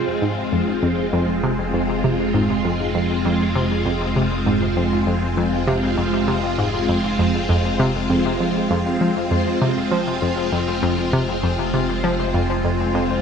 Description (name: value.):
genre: ambient, sequencer-driven space music.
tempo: 99 BPM.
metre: 4/4.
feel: straight.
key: F minor.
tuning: A4 = 440 Hz.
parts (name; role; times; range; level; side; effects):
phased string machine; sustained chords; 0.0-13.2 s; Ab3 to F4; -21 LUFS; equal; ensemble chorus, phaser.
concert harp; arpeggios; 0.0-13.2 s; C4 to F5; -31 LUFS; left 4 dB; auto-pan, ping-pong delay.
fat analog bass; bass; 0.0-13.2 s; F1; -28 LUFS; equal; none.
analog pluck; riff; 0.2-13.1 s; F2 to F3; -22 LUFS; equal; chorus, ping-pong delay.
room: wet huge ambient reverb, RT60 8.6 s.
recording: none.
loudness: -18 LUFS.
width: side -6 dB against mid.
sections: 0.0-13.2 A section.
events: fade-in on harp 0.0-13.2.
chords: 0.0 Fm.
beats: 0.22 0.83 1.43 | 2.04 2.65 3.25 3.86 | 4.46 5.07 5.68 6.28 | 6.89 7.50 8.10 8.71 | 9.31 9.92 10.53 11.13 | 11.74 12.34 12.95.